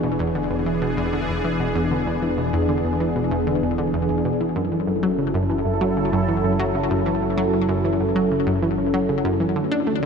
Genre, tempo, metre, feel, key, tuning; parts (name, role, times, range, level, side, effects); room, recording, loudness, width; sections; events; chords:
ambient, sequencer-driven space music; 96 BPM; 4/4; straight; A4 = 445 Hz
sweeping resonant pad; sustained chords; 0.0-10.1 s; D3 to A4; -22 LUFS; equal; chorus
analog pluck; riff; 0.0-10.1 s; E2 to D4; -23 LUFS; equal; chorus, ping-pong delay
fat analog bass; bass; 0.0-10.1 s; E1 to D2; -32 LUFS; equal
wet huge ambient reverb, RT60 8.0 s; dreamy mix soaked in reverb; -19 LUFS; side -6 dB against mid
0.0-10.1 A section
0.0 E7; 4.6 F#m7